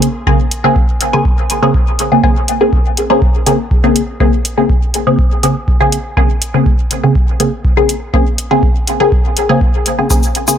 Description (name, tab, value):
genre	dub techno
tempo	122 BPM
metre	4/4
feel	straight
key	Bb minor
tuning	A4 = 439 Hz
part	filtered dub chord stab	stabs	0.0-10.6 s	Db3 to Ab4	-13 LUFS	left 1 dB	phaser, cassette tape, sidechain pumping, dub echo
part	electronic hi-hat	drums	0.0-10.5 s	none	-18 LUFS	equal	none
part	electronic kick drum	drums	0.3-10.2 s	none	-14 LUFS	equal	none
part	tube shaker	percussion	10.1-10.6 s	none	-16 LUFS	left 1 dB	none
room	light reverb, digital ambience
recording	echo-heavy mix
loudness	-10 LUFS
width	side -9 dB against mid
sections	0.0-10.6 A section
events	none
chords	0.0 Bbm9